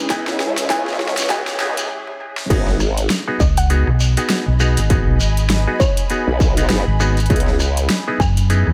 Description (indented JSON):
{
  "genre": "glitch hop",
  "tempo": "100 BPM",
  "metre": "4/4",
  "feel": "swing 58% on 16ths",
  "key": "G# minor",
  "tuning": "A4 = 440 Hz",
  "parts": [
    { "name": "dark analog pad", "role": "sustained chords", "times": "0.0-2.5 s", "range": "G#3 to C#5", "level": "-30 LUFS", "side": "equal", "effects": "chorus, sidechain pumping" },
    { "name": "riser", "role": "sound effects", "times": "0.0-1.9 s", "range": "none", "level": "-33 LUFS", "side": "equal", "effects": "none" },
    { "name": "granular cloud pad", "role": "texture", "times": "0.0-8.7 s", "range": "C#4 to B5", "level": "-33 LUFS", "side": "equal", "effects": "built-in reverb, sidechain pumping" },
    { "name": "woody wave-folded pluck", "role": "melody", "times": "0.1-8.3 s", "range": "C#5 to G#5", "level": "-28 LUFS", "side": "equal", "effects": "chorus, analog delay" },
    { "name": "mellow clav", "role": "stabs", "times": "0.1-8.7 s", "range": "B3 to G#4", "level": "-27 LUFS", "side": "equal", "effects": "sidechain pumping, analog delay" },
    { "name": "dubstep drum kit", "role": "drums", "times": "0.1-8.7 s", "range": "crash cymbal, hi-hat, rim click, snare drum, toms", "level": "-26 LUFS", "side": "equal", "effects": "high-pass filter on snare, small room ambience, high-pass filter on hats, high-pass filter on toms, high-pass filter on cymbals" },
    { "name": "electronic kick drum", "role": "drums", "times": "0.1-8.3 s", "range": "none", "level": "-20 LUFS", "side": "equal", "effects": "distortion, small room ambience" },
    { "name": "shekere", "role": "percussion", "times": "0.1-8.6 s", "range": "none", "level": "-31 LUFS", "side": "equal", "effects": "none" },
    { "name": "formant-sweep wobble bass", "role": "bass", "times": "0.3-7.9 s", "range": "G#1 to C#2", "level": "-22 LUFS", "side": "equal", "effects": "chorus, overdrive, high-pass filter" },
    { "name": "fingered electric bass", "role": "bass", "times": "3.4-8.7 s", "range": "G#1 to F#2", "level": "-18 LUFS", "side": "equal", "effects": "none" }
  ],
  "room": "light reverb, digital ambience",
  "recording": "echo-heavy mix, high-pass filter",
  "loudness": "-17 LUFS",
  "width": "mono",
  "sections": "0.0-2.5 A section; 2.5-8.7 B section",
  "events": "build-up 0.0-2.5; drum fill 0.0-1.9, 2.1-2.5; riser 0.0-1.9; filter sweep on analog synth pad 0.0-2.5; break 1.9-2.5; drop 2.5-8.7",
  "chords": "0.0 C#m7; 2.5 G#m7; 7.3 C#m7",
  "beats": "| 0.10 0.70 1.30 1.90 | 2.50 3.10 3.70 4.30 | 4.90 5.50 6.10 6.70 | 7.30 7.90 8.50"
}